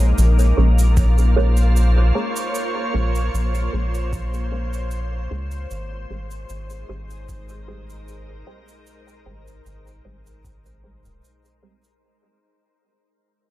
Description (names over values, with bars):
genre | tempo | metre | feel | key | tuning
ambient dub | 76 BPM | 4/4 | swing 53% on 16ths | unclear | A4 = 440 Hz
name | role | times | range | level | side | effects
soft additive organ-like pad | sustained chords | 0.0-12.0 s | Ab3 to Db5 | -28 LUFS | equal | ensemble chorus, built-in reverb
filtered dub chord stab | stabs | 0.0-11.8 s | G4 to Db5 | -29 LUFS | right 3 dB | phaser, wide subtle chorus, dub echo
round analog bass | bass | 0.0-11.2 s | Eb1 to Db2 | -18 LUFS | equal | none
cabasa | drums | 0.2-12.0 s | none | -36 LUFS | right 4 dB | dub echo
electronic kick drum | drums | 1.0-10.6 s | none | -22 LUFS | equal | overdrive
room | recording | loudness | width
little or no reverb | faint mains hum | -17 LUFS | side -16 dB against mid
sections
0.0-12.0 A section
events
fade-out 0.0-12.0; filter sweep on analog synth bass 0.0-12.0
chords
0.0 Bbm7; 5.7 Abmaj7